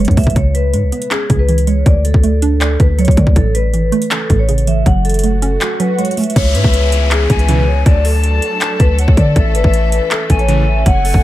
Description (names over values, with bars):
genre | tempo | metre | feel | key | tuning
hip hop, trap | 160 BPM | 4/4 | half-time | unclear | A4 = 440 Hz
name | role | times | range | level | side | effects
vibraphone with medium hard mallets | melody | 0.0-11.2 s | G#4 to F#5 | -20 LUFS | left 1 dB | low-pass filter, dub echo
hollow square pluck | accompaniment | 0.0-6.4 s | A2 to D5 | -18 LUFS | right 5 dB | chorus, low-pass filter, dub echo
warm 808-style bass | bass | 0.0-11.2 s | F#1 to D3 | -13 LUFS | equal | none
trap drum kit | drums | 0.0-11.2 s | crash cymbal, handclaps, hi-hat, kick drum | -14 LUFS | equal | overdrive
swell and downlifter | sound effects | 4.8-9.4 s | none | -26 LUFS | left 1 dB | none
silver concert flute | second line | 6.4-11.2 s | D5 to A5 | -22 LUFS | left 5 dB | dub echo
rich symphonic string section | sustained chords | 6.4-11.2 s | E3 to G#5 | -25 LUFS | equal | none
big bright polysynth | stabs | 7.5-7.6, 10.5-10.6 s | A2 to E3 | -17 LUFS | right 2 dB | none
room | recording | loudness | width
little or no reverb | echo-heavy mix | -11 LUFS | side -14 dB against mid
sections
0.0-6.4 A section; 6.4-11.2 B section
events
swell 4.8-6.4; break 5.6-6.4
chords
0.4 C#m7; 1.9 D; 3.4 A; 4.9 F#madd9; 6.4 C#m7; 7.9 D; 9.4 A